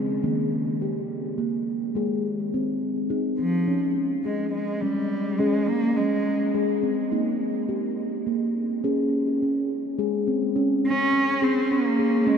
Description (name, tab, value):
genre	world meditative, meditative tuned percussion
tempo	105 BPM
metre	3/4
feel	swing 55% on 16ths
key	Db lydian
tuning	A4 = 440 Hz
part	steel tongue drum	arpeggios	0.0-12.4 s	Eb3 to Ab4	-23 LUFS	equal	tape echo
part	dark cello	melody	3.4-6.5, 10.9-12.4 s	F3 to Db4	-26 LUFS	equal	tape echo
room	wet huge ambient reverb, RT60 8.2 s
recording	in a vast, echoing space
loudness	-22 LUFS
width	side -7 dB against mid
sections	0.0-10.6 A section; 10.6-12.4 B section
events	none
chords	0.2 Eb; 2.0 Ab; 3.7 Db5; 7.1 Eb; 8.8 Db5